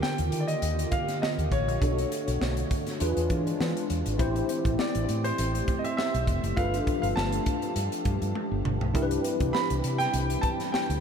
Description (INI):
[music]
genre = polished 1980s jazz-funk pop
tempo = 101 BPM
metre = 4/4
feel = swing 54% on 16ths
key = G major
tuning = A4 = 440 Hz
[part]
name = warm concert grand piano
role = melody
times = 0.0-11.0 s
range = C5 to B5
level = -32 LUFS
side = right 1 dB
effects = wide subtle chorus, diffuse ambient delay
[part]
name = tine electric piano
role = accompaniment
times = 0.0-11.0 s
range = D3 to C#5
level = -31 LUFS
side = left 1 dB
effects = medium stereo tremolo, ensemble chorus
[part]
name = hollow soft pad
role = sustained chords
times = 0.0-11.0 s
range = D3 to C#5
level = -35 LUFS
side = left 1 dB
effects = chorus
[part]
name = crisp fusion drum kit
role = drums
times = 0.0-11.0 s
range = hi-hat, kick drum, snare drum, toms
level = -31 LUFS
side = equal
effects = none
[part]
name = fingered electric bass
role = bass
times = 0.2-11.0 s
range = F1 to E3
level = -29 LUFS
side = equal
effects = none
[sound]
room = moderate huge ambient reverb, RT60 7.9 s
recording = dreamy mix soaked in reverb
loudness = -25 LUFS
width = side -7 dB against mid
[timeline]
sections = 0.0-11.0 A section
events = drum fill 8.4-9.0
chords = 0.0 Ebmaj9; 1.8 Bm9; 3.0 E7b9; 4.2 Am7; 6.6 G9; 9.0 Cmaj7